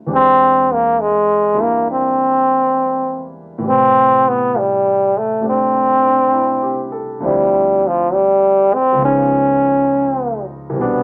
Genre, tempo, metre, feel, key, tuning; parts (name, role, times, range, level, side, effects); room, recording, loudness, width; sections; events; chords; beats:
jazz ballad; 68 BPM; 4/4; swing 68% on 8ths; A4 = 440 Hz
warm grand piano; accompaniment; 0.0-11.0 s; C2 to B4; -26 LUFS; equal
clear trombone; melody; 0.1-11.0 s; F3 to Db4; -15 LUFS; equal
moderate studio reverb, RT60 0.5 s; -15 LUFS; mono
0.0-11.0 A section
0.1 E7alt; 3.6 Am9; 7.2 Dm7; 9.0 Db9
| 0.07 0.96 1.85 2.75 | 3.64 4.54 5.43 6.32 | 7.21 8.10 8.98 9.87 | 10.76